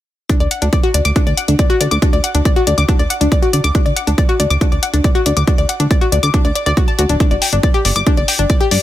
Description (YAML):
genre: uplifting trance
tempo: 139 BPM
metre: 4/4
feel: straight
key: D major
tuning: A4 = 440 Hz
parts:
  - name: analog pluck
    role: arpeggios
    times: 0.3-8.8 s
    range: D4 to D6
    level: -17 LUFS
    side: left 3 dB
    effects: chorus, sidechain pumping, ping-pong delay
  - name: electronic hi-hat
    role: drums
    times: 0.3-8.8 s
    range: none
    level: -20 LUFS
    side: left 4 dB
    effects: none
  - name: electronic kick drum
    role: drums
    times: 0.3-8.6 s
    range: none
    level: -14 LUFS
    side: right 1 dB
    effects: none
  - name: plucky analog bass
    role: bass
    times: 0.4-8.8 s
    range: D1 to D2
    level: -16 LUFS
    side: right 1 dB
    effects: tube saturation, sidechain pumping
room: little or no reverb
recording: none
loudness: -12 LUFS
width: side -13 dB against mid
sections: 0.3-8.8 A section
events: none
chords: 0.3 D; 7.2 G5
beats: | 0.30 0.73 1.16 1.59 | 2.02 2.45 2.89 3.32 | 3.75 4.18 4.61 5.04 | 5.47 5.91 6.34 6.77 | 7.20 7.63 8.06 8.50